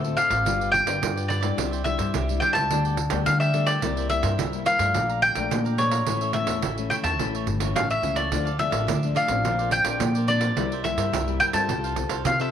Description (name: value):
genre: samba and choro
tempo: 107 BPM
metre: 4/4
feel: straight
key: unclear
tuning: A4 = 440 Hz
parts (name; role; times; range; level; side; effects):
- mandolin; melody; 0.0-12.5 s; C#5 to A5; -24 LUFS; left 1 dB; none
- cavaquinho; accompaniment; 0.0-12.5 s; D4 to Bb5; -36 LUFS; right 11 dB; none
- nylon-string guitar; accompaniment; 0.0-12.5 s; F2 to B4; -30 LUFS; left 11 dB; none
- upright bass; bass; 0.0-12.5 s; G1 to D3; -27 LUFS; equal; none
- pandeiro; percussion; 0.0-12.5 s; none; -30 LUFS; right 10 dB; none
room: moderate echo chamber reverb, RT60 1.9 s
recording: 1960s-style stereo with parts hard left and right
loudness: -21 LUFS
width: side -9 dB against mid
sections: 0.0-12.5 A section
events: none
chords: 0.5 G7; 1.6 Cadd9; 2.7 Gsus2/D; 3.8 C7; 5.0 Bbmaj7; 6.1 A; 8.3 Dm; 9.4 Bbadd9; 10.6 C7; 11.7 F/C